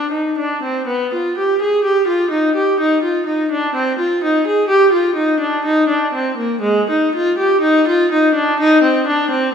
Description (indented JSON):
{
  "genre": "classical, baroque-style suite movement for unaccompanied viola",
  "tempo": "62 BPM",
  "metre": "3/4",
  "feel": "rubato",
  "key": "C minor",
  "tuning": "A4 = 440 Hz",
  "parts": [
    { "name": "warm viola", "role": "solo", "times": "0.0-9.5 s", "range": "Ab3 to Ab4", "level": "-14 LUFS", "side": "equal", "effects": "none" }
  ],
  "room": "wet recital hall reverb, RT60 1.7 s",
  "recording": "recorded in a church or concert hall",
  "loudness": "-13 LUFS",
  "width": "side -7 dB against mid",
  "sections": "0.0-9.5 A section",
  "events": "none",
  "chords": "none",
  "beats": "| 0.86 1.84 2.79 | 3.74 4.70 5.64 | 6.62 7.61 8.58"
}